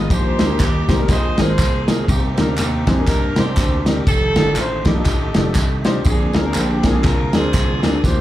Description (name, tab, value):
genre	uptempo gospel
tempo	121 BPM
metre	4/4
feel	swing 58% on 8ths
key	unclear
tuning	A4 = 441 Hz
part	warm horn section	melody	0.0-8.2 s	Bb3 to Eb5	-23 LUFS	right 1 dB	slapback echo
part	warm upright piano	accompaniment	0.0-8.2 s	Bb2 to C5	-24 LUFS	left 4 dB	slapback echo
part	bright tonewheel organ	sustained chords	0.0-8.2 s	C3 to Ab4	-27 LUFS	right 3 dB	slow rotary speaker, overdrive, chorus vibrato
part	dry thumbed slap bass	bass	0.0-8.2 s	F1 to G2	-20 LUFS	equal	none
part	warm soul drum kit	drums	0.1-8.2 s	kick drum, ride cymbal, snare drum	-19 LUFS	equal	none
part	tambourine and handclaps	percussion	0.1-8.2 s	none	-30 LUFS	right 2 dB	slapback echo
room	light reverb, small room reverb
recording	live gig heard through the venue's PA, club reverb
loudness	-15 LUFS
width	side -14 dB against mid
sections	0.0-8.2 A section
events	drum fill 8.0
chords	0.1 Eb/Bb; 1.1 Bb9sus4; 2.1 Cm9; 4.1 F13; 6.1 Bb9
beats	| 0.11 0.60 1.10 1.59 | 2.09 2.58 3.08 3.58 | 4.07 4.57 5.06 5.56 | 6.06 6.55 7.05 7.54 | 8.04